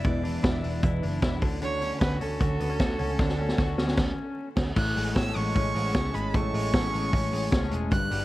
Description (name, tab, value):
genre	jangly indie pop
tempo	152 BPM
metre	4/4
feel	straight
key	A major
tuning	A4 = 440 Hz
part	rich violin	melody	0.0-8.2 s	A4 to F#6	-33 LUFS	right 3 dB	none
part	fingerpicked steel-string acoustic guitar	accompaniment	0.0-4.7 s	E2 to F#4	-34 LUFS	right 4 dB	none
part	twelve-string electric guitar	arpeggios	0.0-8.2 s	E2 to F#4	-32 LUFS	left 3 dB	vibrato effect
part	vintage muted picked electric bass	bass	0.0-8.2 s	E1 to D2	-31 LUFS	equal	none
part	vintage drum kit	drums	0.0-8.2 s	crash cymbal, hi-hat, kick drum, snare drum	-27 LUFS	equal	none
part	phased analog pad	sustained chords	5.1-8.2 s	G#3 to A5	-38 LUFS	right 2 dB	phaser, chorus
room	light reverb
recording	dark, warm production, vinyl crackle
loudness	-24 LUFS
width	side -17 dB against mid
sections	0.0-4.8 A section; 4.8-8.2 B section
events	drum fill 3.2-4.8; band accent 4.0-4.8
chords	0.0 E7; 1.4 Dmaj7; 4.8 Amaj7